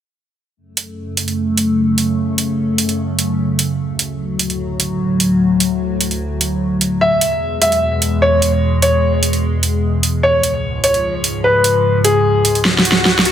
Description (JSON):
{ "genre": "heavy wobble dubstep", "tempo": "149 BPM", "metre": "4/4", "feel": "half-time", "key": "F# minor", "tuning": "A4 = 440 Hz", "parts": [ { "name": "evolving wavetable pad", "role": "sustained chords", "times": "1.0-13.3 s", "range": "C#2 to A3", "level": "-17 LUFS", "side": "equal", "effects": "phaser, built-in reverb" }, { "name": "big-room dance drum kit", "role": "drums", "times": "0.8-13.3 s", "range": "hi-hat, snare drum", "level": "-16 LUFS", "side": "right 2 dB", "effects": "none" }, { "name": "warm grand piano", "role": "melody", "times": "7.0-12.6 s", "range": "G#4 to E5", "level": "-15 LUFS", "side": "left 1 dB", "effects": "digital delay" }, { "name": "swell", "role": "sound effects", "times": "12.7-13.3 s", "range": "none", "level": "-18 LUFS", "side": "equal", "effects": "none" } ], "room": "moderate lush hall reverb, RT60 1.8 s, digital ambience", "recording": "none", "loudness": "-14 LUFS", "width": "side -10 dB against mid", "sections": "0.6-13.3 A section", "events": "filter sweep on ambient pad 0.6-13.3; drum fill 12.6-13.3; swell 12.7-13.3", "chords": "0.6 F#m; 3.8 D; 7.0 E; 10.2 C#" }